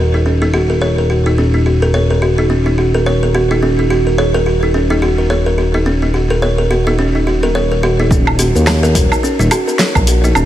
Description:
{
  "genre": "organic downtempo",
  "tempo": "107 BPM",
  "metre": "4/4",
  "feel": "swing 58% on 16ths",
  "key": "Eb minor",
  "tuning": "A4 = 444 Hz",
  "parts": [
    { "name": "buzzing kalimba", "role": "arpeggios", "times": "0.0-10.5 s", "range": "Db4 to Db5", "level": "-14 LUFS", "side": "equal", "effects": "tape echo" },
    { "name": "smooth synth bass", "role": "bass", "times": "0.0-10.5 s", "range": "Eb1 to Eb2", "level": "-15 LUFS", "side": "equal", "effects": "tube saturation, sidechain pumping" },
    { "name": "deep house drum kit", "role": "drums", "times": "0.2-10.5 s", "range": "hi-hat, shaker, snare drum, woodblock", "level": "-17 LUFS", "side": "right 1 dB", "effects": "low-pass filter on perc, low-pass filter on hats, low-pass filter on snare" },
    { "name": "electronic kick drum", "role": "drums", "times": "8.1-10.0 s", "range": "none", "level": "-15 LUFS", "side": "equal", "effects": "none" }
  ],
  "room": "light reverb",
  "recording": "none",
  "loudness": "-11 LUFS",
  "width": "side -12 dB against mid",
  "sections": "0.0-8.1 A section; 8.1-10.5 B section",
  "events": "none",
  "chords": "0.0 Ebm7"
}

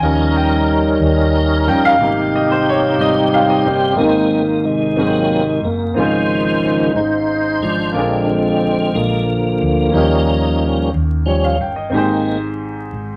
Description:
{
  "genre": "slow gospel",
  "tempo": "60 BPM (dotted quarters)",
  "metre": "6/8",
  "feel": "straight",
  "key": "Ab major",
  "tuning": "A4 = 440 Hz",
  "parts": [
    { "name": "clear grand piano", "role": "accompaniment", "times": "0.0-13.2 s", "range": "Ab2 to Ab5", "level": "-22 LUFS", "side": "equal", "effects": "none" },
    { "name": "tonewheel organ", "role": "sustained chords", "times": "0.0-12.4 s", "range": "C3 to C5", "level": "-18 LUFS", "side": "equal", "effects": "fast rotary speaker, overdrive, chorus vibrato" },
    { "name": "hollow-body short-scale fingered electric bass", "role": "bass", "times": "0.0-13.2 s", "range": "Gb1 to Eb2", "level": "-24 LUFS", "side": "equal", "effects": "none" }
  ],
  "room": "wet studio reverb, RT60 0.6 s",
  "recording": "vinyl crackle",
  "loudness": "-16 LUFS",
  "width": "mono",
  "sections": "0.0-4.0 A section; 4.0-13.2 B section",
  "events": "grand piano solo 0.0-4.0; tonewheel organ solo 4.0-13.2",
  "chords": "0.0 Eb7; 2.0 Abmaj7; 5.0 Ab7; 6.0 Dbmaj7/Ab; 8.0 Bb7; 9.9 Eb7; 11.9 Abmaj7"
}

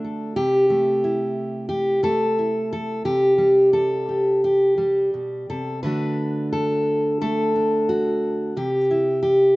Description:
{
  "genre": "folk, solo fingerstyle acoustic guitar",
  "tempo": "88 BPM",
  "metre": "4/4",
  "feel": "rubato",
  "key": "unclear",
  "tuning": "A4 = 441 Hz",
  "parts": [
    { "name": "fingerpicked steel-string acoustic guitar", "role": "solo", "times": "0.0-9.6 s", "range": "B2 to B4", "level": "-18 LUFS", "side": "equal", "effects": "slapback echo" }
  ],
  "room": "little or no reverb",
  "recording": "recorded outdoors, with no room sound, nothing above 7.7 kHz",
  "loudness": "-19 LUFS",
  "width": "side -21 dB against mid",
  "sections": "0.0-5.8 A section; 5.8-9.6 B section",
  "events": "none",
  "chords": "0.4 Am/C; 3.1 C5; 5.8 D; 8.6 C"
}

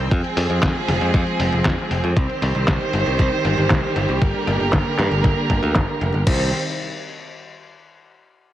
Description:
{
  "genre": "italo disco",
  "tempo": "117 BPM",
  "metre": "4/4",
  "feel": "straight",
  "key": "C minor",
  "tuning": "A4 = 442 Hz",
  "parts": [
    { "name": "rich chamber string section", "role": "sustained chords", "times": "0.0-6.5 s", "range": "D3 to G5", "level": "-22 LUFS", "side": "right 1 dB", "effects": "low-pass filter" },
    { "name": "modern bright picked electric bass", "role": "bass", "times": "0.0-6.5 s", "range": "F1 to G2", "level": "-22 LUFS", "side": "equal", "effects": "ping-pong delay" },
    { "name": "detuned 8-bit digital drum machine", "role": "drums", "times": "0.1-6.4 s", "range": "crash cymbal, handclaps, hi-hat, snare drum", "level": "-25 LUFS", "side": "left 1 dB", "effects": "low-pass filter on hats, low-pass filter on snare, low-pass filter on cymbals" },
    { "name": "electronic kick drum", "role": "drums", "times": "0.1-6.4 s", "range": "none", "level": "-20 LUFS", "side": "equal", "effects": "none" }
  ],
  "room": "light reverb, digital ambience",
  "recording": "heavily compressed radio sound",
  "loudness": "-17 LUFS",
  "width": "side -12 dB against mid",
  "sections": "0.0-6.3 A section; 6.3-8.3 B section",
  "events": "filter sweep on drum 0.0-6.3",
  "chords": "0.1 Fmadd9; 2.2 Cm; 4.2 Gm; 6.3 Cm"
}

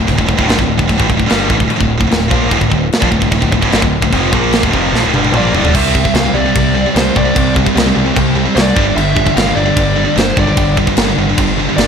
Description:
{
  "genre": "heavy metal",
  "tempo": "149 BPM",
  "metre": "4/4",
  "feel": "straight",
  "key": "D minor",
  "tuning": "A4 = 441 Hz",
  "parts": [
    { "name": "heavy high-gain guitar", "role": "riff", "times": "0.0-11.9 s", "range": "D2 to C4", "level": "-18 LUFS", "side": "left 10 dB", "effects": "distortion, slapback echo" },
    { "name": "heavy high-gain guitar", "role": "riff", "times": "0.0-11.9 s", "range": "D2 to C4", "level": "-17 LUFS", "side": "right 9 dB", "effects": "distortion, slapback echo" },
    { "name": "thick fuzz guitar", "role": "riff", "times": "0.0-11.9 s", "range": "D2 to C4", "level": "-19 LUFS", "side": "equal", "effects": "distortion" },
    { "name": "growling picked electric bass", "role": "bass", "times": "0.0-11.9 s", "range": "D1 to C2", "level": "-18 LUFS", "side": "equal", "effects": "overdrive" },
    { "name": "tight metal drum kit", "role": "drums", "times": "0.1-11.9 s", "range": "china cymbal, crash cymbal, kick drum, snare drum, toms", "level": "-15 LUFS", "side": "equal", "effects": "none" },
    { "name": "dark smooth lead guitar", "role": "melody", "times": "5.4-11.9 s", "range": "C5 to F5", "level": "-18 LUFS", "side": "equal", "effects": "overdrive, tape echo" }
  ],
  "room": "moderate lush hall reverb, RT60 1.8 s, small room ambience",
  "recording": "big arena sound",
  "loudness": "-10 LUFS",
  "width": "side -7 dB against mid",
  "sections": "0.0-5.7 A section; 5.7-11.9 B section",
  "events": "drum fill 4.9-5.7",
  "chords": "0.0 Dm; 5.7 C5; 8.8 G5"
}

